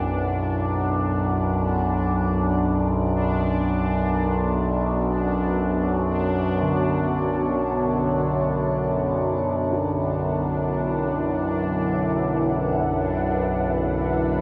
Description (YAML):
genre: dark ambient drone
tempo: free time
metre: none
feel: none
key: B minor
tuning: A4 = 440 Hz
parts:
  - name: deep dark ambient pad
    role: sustained chords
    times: 0.0-14.4 s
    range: B3 to F#5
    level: -30 LUFS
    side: equal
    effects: chorus, built-in reverb, shimmer reverb
  - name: overtone-sweeping drone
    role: drone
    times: 0.0-14.4 s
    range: B1 to F#2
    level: -26 LUFS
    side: equal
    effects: chorus, built-in reverb
  - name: bubbling stepped-filter texture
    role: texture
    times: 0.0-14.4 s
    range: D4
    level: -31 LUFS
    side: equal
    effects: chorus, built-in reverb, shimmer reverb
  - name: bronze singing bowl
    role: arpeggios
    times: 6.6-14.4 s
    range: D3 to F#4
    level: -32 LUFS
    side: equal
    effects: tape echo
room: wet cathedral reverb, RT60 6.5 s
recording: worn, warbling old tape, cassette tape, warbly pitch drift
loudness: -23 LUFS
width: mono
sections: 0.0-14.4 A section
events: fade-in on singing bowl 0.0-14.4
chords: 0.0 Bm